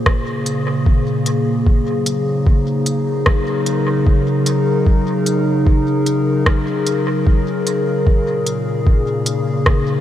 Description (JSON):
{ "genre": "ambient dub", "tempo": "75 BPM", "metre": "4/4", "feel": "straight", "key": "unclear", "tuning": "A4 = 440 Hz", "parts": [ { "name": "warbly tape-like pad", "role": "sustained chords", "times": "0.0-10.0 s", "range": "Bb2 to C5", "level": "-17 LUFS", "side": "left 1 dB", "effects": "chorus, built-in reverb" }, { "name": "electronic kick drum", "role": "drums", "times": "0.1-9.8 s", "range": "none", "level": "-14 LUFS", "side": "equal", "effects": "overdrive" }, { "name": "organic electronic drum kit", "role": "drums", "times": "0.1-9.8 s", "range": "hi-hat, rim click", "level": "-23 LUFS", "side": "equal", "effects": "dub echo" } ], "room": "moderate huge ambient reverb, RT60 7.7 s", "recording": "dreamy mix soaked in reverb", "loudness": "-14 LUFS", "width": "side -11 dB against mid", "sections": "0.0-10.0 A section", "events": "none", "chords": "0.0 Bbm9; 1.7 Gb6; 8.1 Bbm7" }